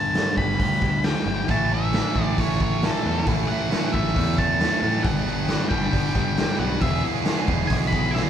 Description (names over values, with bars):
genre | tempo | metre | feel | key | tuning
quiet-loud alternative rock | 135 BPM | 4/4 | straight | A mixolydian | A4 = 442 Hz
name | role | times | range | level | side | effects
octave-fuzz lead guitar | melody | 0.0-8.2 s | A4 to B5 | -27 LUFS | equal | distortion
twelve-string electric guitar | arpeggios | 0.0-1.5 s | G2 to G4 | -33 LUFS | right 6 dB | none
thick fuzz guitar | riff | 0.0-8.3 s | E2 to A3 | -27 LUFS | left 4 dB | distortion
raw garage drum kit | drums | 0.1-8.3 s | hi-hat, kick drum, snare drum, toms | -24 LUFS | equal | none
growling picked electric bass | bass | 0.4-8.2 s | E1 to A2 | -28 LUFS | right 1 dB | overdrive
distorted electric guitar | riff | 1.5-8.3 s | E3 to A4 | -28 LUFS | right 8 dB | overdrive
room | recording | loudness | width
moderate large studio reverb, RT60 1.2 s | band playing live in one room | -20 LUFS | side -9 dB against mid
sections
0.0-8.3 A section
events
lead electric guitar solo 0.0-8.3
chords
0.0 G; 1.5 A; 5.1 G; 6.8 E